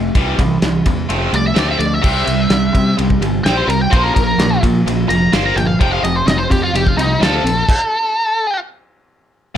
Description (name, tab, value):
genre	classic rock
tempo	128 BPM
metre	4/4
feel	straight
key	unclear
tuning	A4 = 441 Hz
part	overdriven electric guitar	riff	0.0-9.6 s	F2 to C4	-17 LUFS	right 1 dB	phaser
part	growling fingered electric bass	bass	0.0-7.6 s	F1 to C3	-20 LUFS	equal	overdrive
part	cloth-damped thuddy drum kit	drums	0.1-7.8 s	crash cymbal, kick drum, ride cymbal, snare drum	-18 LUFS	equal	none
part	octave-fuzz lead guitar	melody	1.4-8.6 s	Eb4 to C6	-17 LUFS	equal	wah, distortion
room	light reverb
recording	none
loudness	-13 LUFS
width	side -10 dB against mid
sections	0.0-9.6 A section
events	lead electric guitar solo 0.0-9.6; stop 7.7-9.6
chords	0.2 C; 1.1 F; 2.0 C; 3.9 Bb5; 5.8 F; 7.7 N.C.